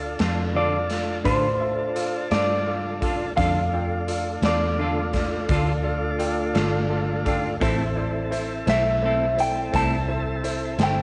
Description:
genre	slow blues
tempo	57 BPM (dotted quarters)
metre	12/8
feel	straight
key	unclear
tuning	A4 = 441 Hz
part	bright concert grand piano	accompaniment	0.0-11.0 s	E4 to A5	-34 LUFS	equal	none
part	tonewheel organ	sustained chords	0.0-11.0 s	A3 to A4	-32 LUFS	equal	slow rotary speaker
part	vintage muted fingered electric bass	bass	0.0-11.0 s	G1 to A2	-30 LUFS	equal	none
part	clean electric guitar	accompaniment	0.2-11.0 s	D3 to A4	-33 LUFS	equal	harmonic tremolo
part	raw garage drum kit	drums	0.2-11.0 s	hi-hat, kick drum, snare drum	-32 LUFS	equal	none
part	electric guitar through a small old amp	melody	0.6-11.0 s	C5 to A5	-27 LUFS	equal	spring reverb
room	light reverb, studio reverb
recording	nothing above 10.3 kHz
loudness	-24 LUFS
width	mono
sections	0.0-11.0 A section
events	grand piano fill 6.5-7.6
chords	0.0 Dm; 7.6 Am

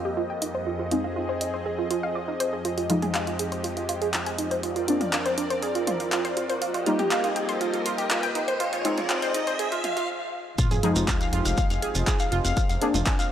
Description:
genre	melodic techno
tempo	121 BPM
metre	4/4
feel	straight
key	F dorian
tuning	A4 = 442 Hz
part	lush unison pad	sustained chords	0.0-13.3 s	F2 to Eb5	-32 LUFS	left 1 dB	chorus, sidechain pumping
part	synth brass stab	stabs	0.0-13.0 s	F3 to Eb4	-30 LUFS	left 2 dB	chorus, sidechain pumping, analog delay
part	overtone-sweeping drone	drone	0.0-13.3 s	F2	-42 LUFS	right 1 dB	chorus, built-in reverb, sidechain pumping
part	analog pluck	arpeggios	0.1-13.3 s	D4 to Ab5	-28 LUFS	right 2 dB	chorus, sidechain pumping, analog delay
part	punchy analog drum machine	drums	0.4-13.3 s	handclaps, hi-hat, toms	-30 LUFS	equal	overdrive
part	riser and sub drop	sound effects	4.4-12.6 s	none	-33 LUFS	left 1 dB	none
part	electronic kick drum	drums	10.6-13.2 s	none	-25 LUFS	equal	overdrive
part	shekere	percussion	10.6-13.3 s	none	-34 LUFS	right 3 dB	none
part	fat analog bass	bass	10.7-13.0 s	F1	-27 LUFS	equal	sidechain pumping
room	moderate lush hall reverb, RT60 2.8 s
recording	dry, gritty hardware recording, high-pass filter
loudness	-23 LUFS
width	side -10 dB against mid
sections	0.0-10.6 A section; 10.6-13.3 B section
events	build-up 0.0-10.6; filter sweep on synth pluck 0.0-10.6; filter sweep on synth stab 0.0-10.6; filter sweep 0.0-10.6; riser 4.4-10.1; break 10.1-10.6; drop 10.6-13.3; impact 10.6-12.6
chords	0.0 Eb/F; 0.7 Ab/F; 2.6 Fm7; 4.6 Bbadd9/F; 6.6 Eb/F; 8.6 Ab/F; 10.6 Fm7; 12.6 Bbadd9/F

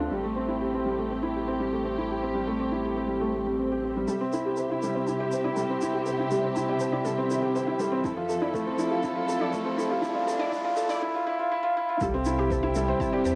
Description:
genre	piano and strings electronica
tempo	121 BPM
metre	4/4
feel	straight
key	unclear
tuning	A4 = 440 Hz
part	muted studio string section	sustained chords	0.0-13.4 s	F2 to E5	-35 LUFS	equal	sidechain pumping, cassette tape
part	felt-muted upright piano	riff	0.0-13.4 s	G3 to C5	-29 LUFS	equal	cassette tape, tape echo
part	warm sub bass	bass	0.0-4.1, 12.0-13.4 s	A1 to E2	-39 LUFS	equal	tube saturation, sidechain pumping
part	swell and riser	sound effects	3.4-11.0 s	none	-44 LUFS	equal	none
part	unison pluck	arpeggios	4.1-13.4 s	G4 to A5	-40 LUFS	equal	sidechain pumping, cassette tape, tape echo, plate reverb
part	shaker	drums	4.1-13.4 s	none	-49 LUFS	equal	cassette tape
part	electronic kick drum	drums	8.0-13.1 s	none	-39 LUFS	equal	cassette tape
room	moderate small room reverb, RT60 0.5 s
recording	home recording on cassette, high-pass filter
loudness	-28 LUFS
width	mono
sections	0.0-4.1 A section; 4.1-12.0 B section; 12.0-13.4 C section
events	swell 3.4-4.1; build-up 4.1-12.0; riser 4.1-11.0; filter sweep on synth arpeggio sound 4.1-12.0; drop 12.0-13.4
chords	0.1 Am7; 4.1 C; 8.0 Fmaj7; 12.0 C

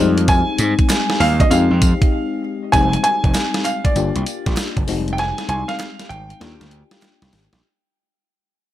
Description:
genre	R&B, new jack swing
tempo	98 BPM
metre	4/4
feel	swing 65% on 16ths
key	F dorian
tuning	A4 = 440 Hz
part	FM electric piano	accompaniment	0.0-7.6 s	G3 to G4	-22 LUFS	left 6 dB	chorus
part	gritty slap bass	bass	0.0-7.6 s	F1 to Ab2	-19 LUFS	equal	overdrive
part	crisp 8-bit digital drum machine	drums	0.2-7.6 s	hi-hat, kick drum, snare drum, tambourine	-19 LUFS	right 1 dB	none
part	warm baby grand piano	melody	0.3-7.3 s	D5 to Ab5	-21 LUFS	right 1 dB	tape echo
part	group handclap	percussion	0.9-7.2 s	none	-31 LUFS	right 5 dB	none
room	digital ambience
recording	none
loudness	-15 LUFS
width	side -13 dB against mid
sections	0.0-2.7 A section; 2.7-7.6 B section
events	break 2.1-2.7; fade-out 2.7-7.6; drum fill 5.2-7.6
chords	0.0 Fm7; 4.0 Gm7; 4.9 Fm7; 6.4 Ebmaj7 (rootless)

